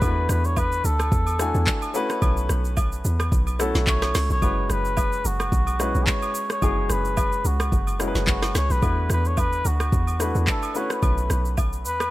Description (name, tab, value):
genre	amapiano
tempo	109 BPM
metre	4/4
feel	swing 55% on 16ths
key	F# minor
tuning	A4 = 438 Hz
part	trumpet with cup mute	melody	0.0-12.1 s	F#4 to C#5	-27 LUFS	left 1 dB	tape echo
part	warm grand piano	accompaniment	0.0-12.1 s	G#3 to G#5	-29 LUFS	left 2 dB	none
part	deep log drum bass	bass	0.0-12.1 s	F#1 to E2	-23 LUFS	equal	none
part	afro-pop drum kit	drums	0.0-12.1 s	handclaps, hi-hat, kick drum, rim click, shaker, snare drum	-25 LUFS	equal	overdrive
part	agogo bells and woodblock	percussion	0.0-12.1 s	none	-35 LUFS	right 2 dB	none
room	little or no reverb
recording	none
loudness	-20 LUFS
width	side -16 dB against mid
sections	0.0-12.1 A section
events	none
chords	0.0 E9sus4; 1.9 B9sus4; 4.4 F#9sus4; 8.8 E9sus4; 10.8 B9sus4